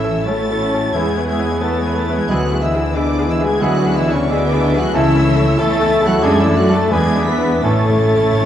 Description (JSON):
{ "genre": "classical, romantic movement for piano and orchestra", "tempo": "78-94 BPM", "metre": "4/4", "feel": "rubato", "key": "A major", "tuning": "A4 = 440 Hz", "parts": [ { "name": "bright grand piano", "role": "melody", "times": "0.0-8.5 s", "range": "C#2 to B4", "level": "-19 LUFS", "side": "left 2 dB", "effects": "none" }, { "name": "rich chamber violin section", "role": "melody", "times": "0.0-8.5 s", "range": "C#6 to B6", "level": "-28 LUFS", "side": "left 1 dB", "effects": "none" }, { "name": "clear clarinet", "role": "second line", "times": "0.0-8.5 s", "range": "C#4 to B4", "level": "-25 LUFS", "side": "equal", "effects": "none" }, { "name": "mellow hollow flute section", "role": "second line", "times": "0.0-8.5 s", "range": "C#5 to B5", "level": "-27 LUFS", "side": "left 1 dB", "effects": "none" }, { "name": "rich chamber violin section", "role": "second line", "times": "0.0-8.5 s", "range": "E4 to E5", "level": "-27 LUFS", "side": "left 1 dB", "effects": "none" }, { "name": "warm oboe", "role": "second line", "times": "0.0-8.5 s", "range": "C#5 to E5", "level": "-29 LUFS", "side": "right 1 dB", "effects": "none" }, { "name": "rich chamber viola section", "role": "accompaniment", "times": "0.0-8.5 s", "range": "A3 to F#4", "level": "-26 LUFS", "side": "right 1 dB", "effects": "none" }, { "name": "warm bassoon", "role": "accompaniment", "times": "0.0-8.5 s", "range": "G#3 to C#4", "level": "-26 LUFS", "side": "right 2 dB", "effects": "none" }, { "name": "mellow French horn section", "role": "sustained chords", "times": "0.0-8.5 s", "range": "C#4 to B4", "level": "-23 LUFS", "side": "left 3 dB", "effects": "none" }, { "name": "rich chamber double bass section", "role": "bass", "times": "0.0-8.5 s", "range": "A1 to F#2", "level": "-22 LUFS", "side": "right 1 dB", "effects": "none" }, { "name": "warm chamber cello section", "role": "bass", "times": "0.0-8.5 s", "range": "C#3 to B3", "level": "-22 LUFS", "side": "right 1 dB", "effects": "none" }, { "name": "warm trombone section", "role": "sustained chords", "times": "0.9-7.9 s", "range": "C#3 to D4", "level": "-28 LUFS", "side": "right 2 dB", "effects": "none" }, { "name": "mellow trumpet", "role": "stabs", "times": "0.9-7.9 s", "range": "E4 to B4", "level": "-29 LUFS", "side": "right 2 dB", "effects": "none" }, { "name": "timpani", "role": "percussion", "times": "7.6-8.5 s", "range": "A2", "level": "-28 LUFS", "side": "right 1 dB", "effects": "none" } ], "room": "wet scoring stage reverb, RT60 1.6 s", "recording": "dark, warm production, vinyl crackle", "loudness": "-13 LUFS", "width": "side -10 dB against mid", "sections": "0.0-8.5 A section", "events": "timpani fill 7.6-8.5", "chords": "0.0 A; 0.9 E; 2.3 E7/D; 4.9 A/C#; 6.2 D/F#; 6.9 E7; 7.6 A", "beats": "0.27 0.95 1.62 | 2.29 2.95 3.62 4.29 | 4.93 5.58 6.23 6.92 | 7.64 8.41" }